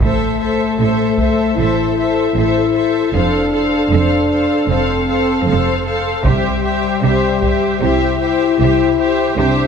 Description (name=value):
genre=cinematic, epic orchestral film score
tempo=77 BPM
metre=4/4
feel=straight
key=unclear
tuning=A4 = 441 Hz
part: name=rich symphonic violin section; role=melody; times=0.0-9.7 s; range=E5 to F5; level=-24 LUFS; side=left 2 dB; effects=none
part: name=rich symphonic violin section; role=second line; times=0.0-9.7 s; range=C5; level=-23 LUFS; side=left 6 dB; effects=none
part: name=rich symphonic viola section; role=accompaniment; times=0.0-9.7 s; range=G4 to A4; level=-21 LUFS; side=right 2 dB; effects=none
part: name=mellow French horn section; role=sustained chords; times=0.0-9.7 s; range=G3 to E4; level=-17 LUFS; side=left 5 dB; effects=none
part: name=rich symphonic cello section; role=bass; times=0.0-9.7 s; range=F2 to C3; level=-23 LUFS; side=right 4 dB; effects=none
part: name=warm studio double bass section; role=bass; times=0.0-9.7 s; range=F1 to C2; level=-21 LUFS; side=right 5 dB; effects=none
part: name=taiko ensemble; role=drums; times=0.0-7.8 s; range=none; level=-21 LUFS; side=right 1 dB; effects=none
room=moderate concert hall reverb, RT60 2.2 s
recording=none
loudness=-13 LUFS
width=side -6 dB against mid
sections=0.0-9.7 A section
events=none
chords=0.0 Am; 3.1 F; 6.3 C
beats=| 0.01 0.79 1.59 2.37 | 3.15 3.92 4.70 5.48 | 6.25 7.03 7.82 8.60 | 9.38